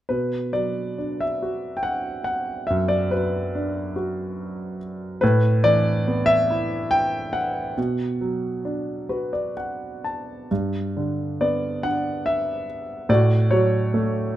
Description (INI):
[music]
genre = classical, lyrical solo piano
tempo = 62-73 BPM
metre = 3/4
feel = rubato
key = B minor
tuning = A4 = 442 Hz
[part]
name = clear concert grand piano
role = solo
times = 0.1-14.4 s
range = F#2 to A5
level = -21 LUFS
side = equal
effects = none
[sound]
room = light reverb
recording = close, detailed microphones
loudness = -21 LUFS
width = side -13 dB against mid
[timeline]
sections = 0.1-10.5 A section; 10.5-14.4 B section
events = grand piano fill 8.6-10.5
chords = 0.1 Bm; 5.2 Asus2; 7.8 Bm; 10.5 G; 13.1 A6